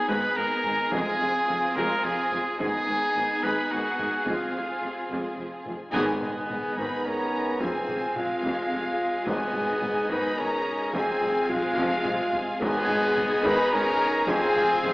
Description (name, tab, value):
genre	cinematic, epic orchestral film score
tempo	108 BPM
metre	3/4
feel	straight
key	G# dorian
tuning	A4 = 440 Hz
part	bright symphonic violin section	melody	0.0-14.9 s	F5 to B5	-35 LUFS	left 1 dB	none
part	rich studio violin section	second line	0.0-14.9 s	D#4 to G#5	-35 LUFS	equal	none
part	warm symphonic viola section	accompaniment	0.0-14.9 s	C3 to G#4	-35 LUFS	equal	none
part	rich studio string section	sustained chords	0.0-14.9 s	B3 to Ab5	-34 LUFS	equal	none
part	clear trumpet	stabs	0.0-14.9 s	Ab3 to B4	-28 LUFS	equal	none
part	timpani	percussion	0.0-0.1, 5.9-6.7, 9.3-10.1, 12.6-13.4 s	G#2	-37 LUFS	equal	none
part	clear symphonic double bass section	bass	0.1-14.9 s	F1 to G#1	-40 LUFS	right 1 dB	none
part	rich symphonic cello section	bass	0.1-14.9 s	F2 to G#2	-36 LUFS	equal	none
part	taiko ensemble	drums	0.6-14.9 s	none	-39 LUFS	equal	none
part	mellow French horn section	sustained chords	0.9-14.9 s	B3 to B4	-29 LUFS	left 1 dB	none
part	warm trombone section	sustained chords	0.9-14.9 s	B2 to B3	-36 LUFS	right 1 dB	none
part	mellow hollow large flute ensemble	second line	5.9-14.9 s	F5 to B5	-32 LUFS	equal	none
room	wet scoring stage reverb, RT60 1.6 s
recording	AM radio sound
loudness	-23 LUFS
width	side -21 dB against mid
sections	0.0-5.9 A section; 5.9-14.9 B section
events	band accent 5.9-6.5; drum fill 11.8-12.6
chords	0.0 G#m; 0.9 Fm; 2.6 G#m; 4.3 Fm; 5.9 G#m; 7.6 Fm; 9.3 G#m; 10.9 Fm; 12.6 G#m; 14.3 Fm